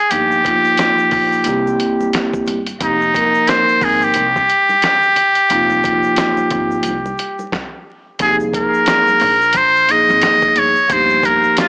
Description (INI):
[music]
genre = hip hop, jazz-hop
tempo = 89 BPM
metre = 4/4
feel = swing 60% on 16ths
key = F minor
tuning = A4 = 440 Hz
[part]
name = trumpet with metal mute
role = melody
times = 0.0-11.7 s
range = Eb4 to Eb5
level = -13 LUFS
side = equal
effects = analog delay
[part]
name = vibraphone with soft mallets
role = accompaniment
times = 0.1-11.7 s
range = F3 to Bb4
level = -18 LUFS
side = equal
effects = none
[part]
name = upright bass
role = bass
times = 0.1-11.4 s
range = F1 to C2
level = -28 LUFS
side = equal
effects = none
[part]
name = dusty soul sampler-style drum kit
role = drums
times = 0.1-11.7 s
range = hi-hat, kick drum, snare drum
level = -21 LUFS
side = equal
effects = none
[part]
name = tube shaker and congas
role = percussion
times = 0.1-11.7 s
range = none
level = -36 LUFS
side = equal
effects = none
[sound]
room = light reverb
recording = dry, gritty hardware recording, vinyl crackle, small speaker sound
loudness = -11 LUFS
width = side -28 dB against mid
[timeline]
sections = 0.0-8.2 A section; 8.2-11.7 B section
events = stop 7.5-8.2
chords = 0.1 Ebadd9/G; 1.5 C7; 2.8 F7sus2; 8.2 Fm7; 10.9 Eb69/G